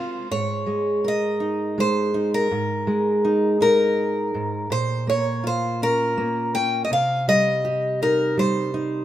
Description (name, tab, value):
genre	folk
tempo	82 BPM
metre	3/4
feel	straight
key	Ab major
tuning	A4 = 440 Hz
part	picked old ladder-braced acoustic guitar	melody	0.0-9.0 s	Bb4 to G5	-22 LUFS	left 1 dB	none
part	fingerpicked steel-string acoustic guitar	accompaniment	0.0-9.0 s	Ab2 to C5	-23 LUFS	right 1 dB	none
room	light reverb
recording	minimal, uncompressed stereo recording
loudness	-19 LUFS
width	side -12 dB against mid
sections	0.3-9.0 A section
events	none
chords	0.3 Absus2; 4.7 Bbm; 6.9 Cm